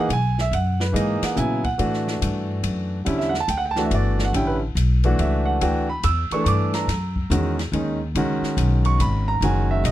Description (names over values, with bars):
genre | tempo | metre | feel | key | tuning
modal jazz | 142 BPM | 3/4 | swing 65% on 8ths | unclear | A4 = 438 Hz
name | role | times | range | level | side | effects
clear concert grand piano | accompaniment | 0.0-9.9 s | C#3 to E6 | -22 LUFS | right 2 dB | none
upright bass | bass | 0.1-9.9 s | F#1 to A#2 | -22 LUFS | left 1 dB | none
open jazz drum kit | drums | 0.1-9.9 s | hi-hat, kick drum, ride cymbal, snare drum | -32 LUFS | left 2 dB | none
room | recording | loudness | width
little or no reverb | dry, close 1970s-style studio recording | -19 LUFS | side -13 dB against mid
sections
0.0-9.9 A section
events
none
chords
0.0 C#9sus4; 1.8 A9sus4; 6.9 C#9sus4